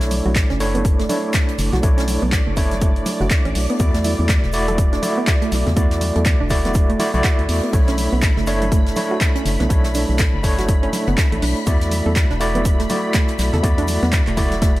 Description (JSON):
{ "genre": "deep house", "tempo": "122 BPM", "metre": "4/4", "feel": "swing 59% on 16ths", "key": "B minor", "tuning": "A4 = 440 Hz", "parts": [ { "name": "overdriven tine electric piano", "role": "stabs", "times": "0.0-14.8 s", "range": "A3 to D5", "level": "-22 LUFS", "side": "equal", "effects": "fast tremolo, sidechain pumping, tape echo" }, { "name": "organ-like FM bass", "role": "bass", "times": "0.0-14.8 s", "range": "E1 to E2", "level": "-22 LUFS", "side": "equal", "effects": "sidechain pumping" }, { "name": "jazz brush drum kit", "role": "drums", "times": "0.0-14.8 s", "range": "hi-hat, shaker, snare drum", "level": "-33 LUFS", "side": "left 2 dB", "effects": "high-pass filter on hats, high-pass filter on snare, high-pass filter on perc, high-pass filter on room" }, { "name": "punchy analog drum machine", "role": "drums", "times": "0.0-14.8 s", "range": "handclaps, hi-hat", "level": "-26 LUFS", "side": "equal", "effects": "overdrive" }, { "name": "analog string pad", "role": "texture", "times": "0.0-14.8 s", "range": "D5 to B5", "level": "-32 LUFS", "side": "right 1 dB", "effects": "ensemble chorus" }, { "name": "congas", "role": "percussion", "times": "0.1-14.6 s", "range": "none", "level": "-29 LUFS", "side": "right 1 dB", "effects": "none" }, { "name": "soft round pluck", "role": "arpeggios", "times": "0.3-14.7 s", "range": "A3 to A4", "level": "-27 LUFS", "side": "right 3 dB", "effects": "chorus, sidechain pumping, tape echo" }, { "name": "electronic kick drum", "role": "drums", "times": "0.4-14.7 s", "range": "none", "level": "-17 LUFS", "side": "equal", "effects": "overdrive" } ], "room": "studio reverb", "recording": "none", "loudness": "-16 LUFS", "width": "side -17 dB against mid", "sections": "0.0-14.8 A section", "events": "none", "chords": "0.0 Bm11; 3.8 E9sus4; 7.7 Bm11; 11.7 E9sus4", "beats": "0.36 0.85 1.34 | 1.83 2.33 2.82 3.31 | 3.80 4.29 4.78 5.28 | 5.77 6.26 6.75 7.24 | 7.74 8.23 8.72 9.21 | 9.70 10.19 10.69 11.18 | 11.67 12.16 12.65 13.14 | 13.64 14.13 14.62" }